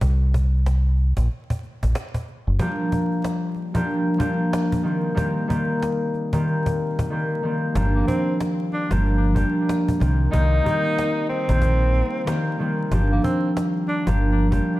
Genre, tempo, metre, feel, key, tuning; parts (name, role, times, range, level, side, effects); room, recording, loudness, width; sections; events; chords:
hip hop, boom-bap hip-hop; 93 BPM; 4/4; swing 62% on 16ths; G minor; A4 = 440 Hz
deep dub fingered electric bass; bass; 0.0-2.6, 7.8-14.6 s; F#1 to C2; -19 LUFS; equal
cajon; drums; 0.0-14.7 s; -29 LUFS; equal
concert harp; accompaniment; 2.6-14.8 s; Eb3 to G4; -22 LUFS; equal; cassette tape, high-pass filter, low-pass filter
breathy tenor saxophone; melody; 7.9-14.1 s; Bb3 to Eb4; -26 LUFS; equal; high-pass filter, low-pass filter, ping-pong delay
moderate plate reverb, RT60 1.6 s, small room ambience; dreamy mix soaked in reverb, vinyl crackle; -19 LUFS; side -17 dB against mid
0.0-7.8 A section; 7.8-14.8 B section
break 0.0-2.6
0.0 N.C.; 2.6 Gm7; 4.9 Cm7; 7.8 Gm7; 10.0 Cm7; 12.9 Gm7